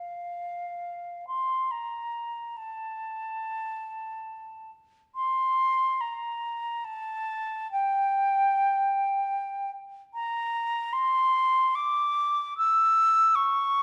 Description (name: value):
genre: classical, free, expressive piece for unaccompanied flute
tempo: free time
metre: none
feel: none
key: unclear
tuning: A4 = 440 Hz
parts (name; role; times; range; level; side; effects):
- mellow concert flute; solo; 0.0-13.8 s; F5 to E6; -28 LUFS; equal; none
room: moderate recital hall reverb, RT60 1.7 s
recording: dark, warm production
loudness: -27 LUFS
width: mono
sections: 0.0-13.8 A section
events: none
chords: none